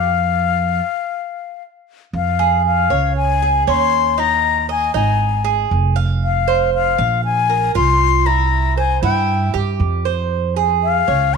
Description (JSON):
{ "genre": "latin, Cuban son and guajira", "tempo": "118 BPM", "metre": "4/4", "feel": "straight", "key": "F minor", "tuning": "A4 = 440 Hz", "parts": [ { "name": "breathy concert flute", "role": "melody", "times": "0.0-11.4 s", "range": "F5 to C6", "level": "-17 LUFS", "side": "left 10 dB", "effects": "none" }, { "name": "Cuban tres", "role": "arpeggios", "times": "0.0-11.4 s", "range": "Db4 to F5", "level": "-20 LUFS", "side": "right 11 dB", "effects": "none" }, { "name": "upright bass", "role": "bass", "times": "0.0-11.4 s", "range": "F1 to G2", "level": "-19 LUFS", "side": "right 2 dB", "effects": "none" } ], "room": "moderate echo chamber reverb, RT60 1.5 s, small room ambience", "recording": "1960s-style stereo with parts hard left and right", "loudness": "-14 LUFS", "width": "side -5 dB against mid", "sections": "0.0-2.1 A section; 2.1-11.4 B section", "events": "stop 0.1-2.1", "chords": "0.1 N.C.; 2.1 Fm; 3.2 Dbsus2; 4.2 Eb5; 5.2 Ab5; 6.2 F5; 7.2 Bb5; 8.3 C; 10.3 Fm" }